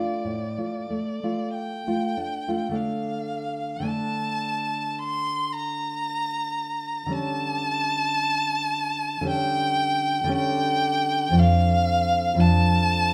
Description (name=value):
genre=romantic duo for violin and classical guitar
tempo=45-58 BPM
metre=4/4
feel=rubato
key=D minor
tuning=A4 = 439 Hz
part: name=clear violin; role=melody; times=0.0-13.1 s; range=D5 to C6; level=-27 LUFS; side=equal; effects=none
part: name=nylon-string guitar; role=accompaniment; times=0.0-13.1 s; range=F2 to F4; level=-28 LUFS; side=equal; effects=none
room=moderate recital hall reverb, RT60 1.4 s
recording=none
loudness=-25 LUFS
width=mono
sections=0.0-2.8 A section; 2.8-13.1 B section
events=none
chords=0.0 Dm; 7.1 A7/D; 11.4 Dm/F